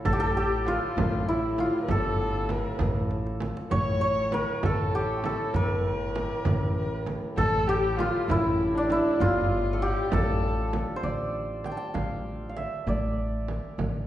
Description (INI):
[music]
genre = Persian modal ensemble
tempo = 66 BPM (dotted quarters)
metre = 6/8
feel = straight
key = A dastgah homayun, A dastgah shur from 11.0 s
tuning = A4 = 440 Hz
[part]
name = santur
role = melody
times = 0.0-14.1 s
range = D4 to A5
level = -29 LUFS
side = equal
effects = none
[part]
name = clear duduk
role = drone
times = 0.0-11.1 s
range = A2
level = -37 LUFS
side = right 1 dB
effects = none
[part]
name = dark kamancheh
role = second line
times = 0.1-10.8 s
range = D4 to C#5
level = -31 LUFS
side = left 2 dB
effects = none
[part]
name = upright bass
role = bass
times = 0.1-14.1 s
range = G1 to A1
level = -31 LUFS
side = equal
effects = none
[part]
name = frame drum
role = percussion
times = 0.1-13.9 s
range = none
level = -33 LUFS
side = right 2 dB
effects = none
[part]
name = tombak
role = percussion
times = 0.1-10.9 s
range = none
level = -32 LUFS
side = equal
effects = none
[sound]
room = wet recital hall reverb, RT60 1.5 s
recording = recorded in a church or concert hall, nothing above 10.6 kHz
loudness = -24 LUFS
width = side -12 dB against mid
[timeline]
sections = 0.0-11.0 A section; 11.0-14.1 B section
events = drum fill 3.1-3.7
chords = none